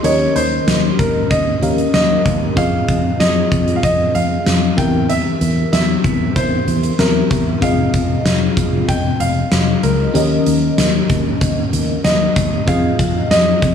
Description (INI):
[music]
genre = 1980s-style pop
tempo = 95 BPM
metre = 4/4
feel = straight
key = F minor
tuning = A4 = 439 Hz
[part]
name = warm concert grand piano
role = melody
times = 0.0-13.7 s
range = Bb4 to G5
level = -20 LUFS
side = right 1 dB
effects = tape echo
[part]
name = FM electric piano with soft pad layer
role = accompaniment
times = 0.0-13.7 s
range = Eb3 to F5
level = -20 LUFS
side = left 2 dB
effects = chorus, tremolo
[part]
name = fingered electric bass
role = bass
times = 0.0-13.7 s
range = F1 to F2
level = -19 LUFS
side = equal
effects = none
[part]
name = huge arena drum kit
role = drums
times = 0.0-13.7 s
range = hi-hat, kick drum, snare drum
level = -17 LUFS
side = left 1 dB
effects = none
[sound]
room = light reverb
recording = studio reverb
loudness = -13 LUFS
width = side -8 dB against mid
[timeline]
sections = 0.0-13.7 A section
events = none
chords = 0.0 Eb7; 2.6 Fm7; 4.8 C7/E; 7.6 Fm7; 10.1 Eb7; 12.7 Fm7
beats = | 0.04 0.68 1.31 1.94 | 2.57 3.20 3.83 4.46 | 5.10 5.73 6.36 6.99 | 7.62 8.26 8.89 9.52 | 10.15 10.78 11.41 12.04 | 12.68 13.31